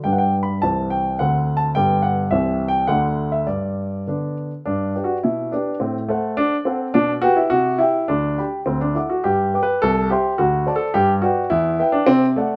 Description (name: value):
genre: classical-period piano sonatina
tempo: 105 BPM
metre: 2/4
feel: rubato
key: G major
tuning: A4 = 440 Hz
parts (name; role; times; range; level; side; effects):
- warm grand piano; solo; 0.0-12.6 s; C2 to D6; -20 LUFS; equal; none
room: moderate stone room reverb, RT60 1.0 s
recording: none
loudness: -20 LUFS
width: mono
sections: 0.0-4.7 A section; 4.7-12.6 B section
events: none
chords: 0.1 G; 0.6 C; 1.2 D7; 1.8 G; 2.3 C; 2.9 D; 3.5 G; 5.2 G/B; 5.8 F#dim/A; 7.0 G/B; 7.5 C; 8.1 G/D; 8.7 D; 9.2 G; 9.8 C; 10.4 D7; 10.9 G; 11.5 Em